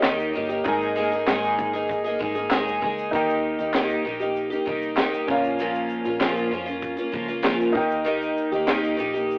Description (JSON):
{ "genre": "acoustic pop", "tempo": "97 BPM", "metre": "4/4", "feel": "straight", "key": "Eb mixolydian", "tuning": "A4 = 441 Hz", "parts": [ { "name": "picked twelve-string acoustic guitar", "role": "accompaniment", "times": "0.0-9.4 s", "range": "Bb2 to Ab4", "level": "-26 LUFS", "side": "equal", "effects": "none" }, { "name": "warm upright piano", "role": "accompaniment", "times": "0.0-9.4 s", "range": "Db4 to Ab5", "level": "-30 LUFS", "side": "equal", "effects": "none" }, { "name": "vintage muted fingered electric bass", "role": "bass", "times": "0.0-9.4 s", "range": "F1 to F2", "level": "-46 LUFS", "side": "equal", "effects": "none" }, { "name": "compact cocktail drum kit", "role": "drums", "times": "0.0-9.4 s", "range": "kick drum, shaker, snare drum", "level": "-27 LUFS", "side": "equal", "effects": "none" }, { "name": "group handclap", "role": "percussion", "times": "0.0-8.8 s", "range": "none", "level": "-30 LUFS", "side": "equal", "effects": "none" } ], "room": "moderate booth ambience, RT60 0.2 s", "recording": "rough rehearsal-room recording, warm saturation, telephone sound", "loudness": "-24 LUFS", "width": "mono", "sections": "0.0-3.1 A section; 3.1-9.4 B section", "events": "none", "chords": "0.0 Eb; 0.7 Absus2; 3.1 Eb; 5.3 Bbm; 7.8 Eb" }